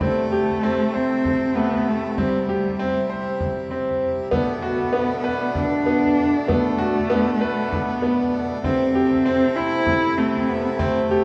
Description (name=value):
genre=contemporary instrumental, chamber music in an uneven meter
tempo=195 BPM (eighths)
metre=7/8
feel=straight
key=unclear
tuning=A4 = 440 Hz
part: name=warm cello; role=melody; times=0.0-11.2 s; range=G3 to E4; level=-25 LUFS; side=equal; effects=none
part: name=hand-pumped harmonium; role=sustained chords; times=0.0-11.2 s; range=B2 to E4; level=-30 LUFS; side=equal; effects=none
part: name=bright concert grand piano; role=arpeggios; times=0.0-11.2 s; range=A3 to C5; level=-25 LUFS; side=equal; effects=none
part: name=frame drum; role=percussion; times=0.0-11.1 s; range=none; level=-34 LUFS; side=equal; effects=none
room=wet cathedral reverb, RT60 4.7 s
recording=recorded in a church or concert hall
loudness=-21 LUFS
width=mono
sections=0.0-11.2 A section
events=none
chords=0.0 C6; 4.3 Bm7; 8.6 C6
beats=| 0.02 0.32 0.63 0.94 1.25 1.56 1.86 | 2.17 2.48 2.79 3.10 3.40 3.71 4.02 | 4.33 4.63 4.94 5.25 5.56 5.87 6.17 | 6.48 6.79 7.10 7.41 7.71 8.02 8.33 | 8.64 8.94 9.25 9.56 9.87 10.17 10.48 | 10.79 11.10